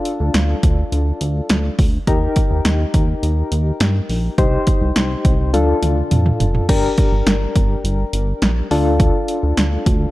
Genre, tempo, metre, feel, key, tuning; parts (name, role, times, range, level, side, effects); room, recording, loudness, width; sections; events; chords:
synth-pop; 104 BPM; 4/4; straight; G minor; A4 = 438 Hz
soft electric-piano-like synth keys; accompaniment; 0.0-10.1 s; D4 to C5; -21 LUFS; left 2 dB; chorus, tremolo
punchy analog drum machine; drums; 0.1-10.0 s; crash cymbal, hi-hat, kick drum, snare drum, toms; -17 LUFS; equal
chorused synth bass; bass; 0.2-10.1 s; F1 to G2; -18 LUFS; equal
light reverb; dark, warm production; -15 LUFS; side -17 dB against mid
0.0-6.7 A section; 6.7-10.1 A section
drum fill 5.5-6.7
0.0 Dm; 2.1 Eb; 4.4 Cm; 5.5 Dm; 6.7 Gm; 8.7 Dm